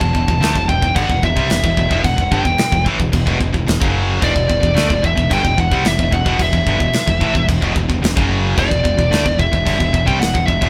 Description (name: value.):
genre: heavy metal.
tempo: 110 BPM.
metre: 4/4.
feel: straight.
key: E minor.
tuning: A4 = 441 Hz.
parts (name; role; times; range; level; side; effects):
high-gain lead guitar; melody; 0.0-10.7 s; D5 to A5; -21 LUFS; equal; distortion.
high-gain distorted guitar; riff; 0.0-10.7 s; E2 to A3; -23 LUFS; equal; distortion.
tight distorted guitar; riff; 0.0-10.7 s; E2 to A3; -25 LUFS; equal; distortion.
growling fingered electric bass; bass; 0.0-10.7 s; E1 to D2; -23 LUFS; equal; overdrive.
modern studio drum kit; drums; 0.0-10.7 s; crash cymbal, kick drum, snare drum; -22 LUFS; equal; none.
room: moderate stone room reverb, RT60 1.1 s.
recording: band playing live in one room.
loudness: -16 LUFS.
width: mono.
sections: 0.0-10.7 A section.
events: none.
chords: 0.0 Em.